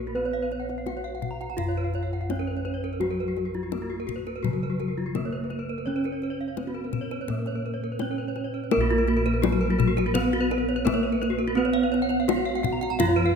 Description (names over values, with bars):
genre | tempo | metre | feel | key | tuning
Balinese gamelan | 84 BPM | 4/4 | straight | Bb pelog | A4 = 436 Hz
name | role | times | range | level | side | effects
gamelan-type bronze metallophone | melody | 0.0-13.4 s | Gb3 to Gb4 | -28 LUFS | right 1 dB | none
gamelan-type bronze metallophone | arpeggios | 0.0-13.3 s | F4 to Bb5 | -33 LUFS | right 5 dB | none
gamelan-type bossed gongs | bass | 0.0-13.4 s | Bb1 to Cb5+35c | -30 LUFS | left 1 dB | none
gamelan-type bronze metallophone | arpeggios | 0.2-13.4 s | Gb4 to Bb5 | -33 LUFS | left 4 dB | none
kendang | percussion | 0.5-13.2 s | none | -31 LUFS | left 7 dB | none
gamelan-type bronze metallophone | accompaniment | 8.7-13.4 s | F3 to Cb4+35c | -31 LUFS | right 5 dB | none
room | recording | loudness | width
moderate concert hall reverb, RT60 2.3 s | minimal, uncompressed stereo recording | -24 LUFS | side -6 dB against mid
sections
0.0-13.4 A section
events
none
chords
none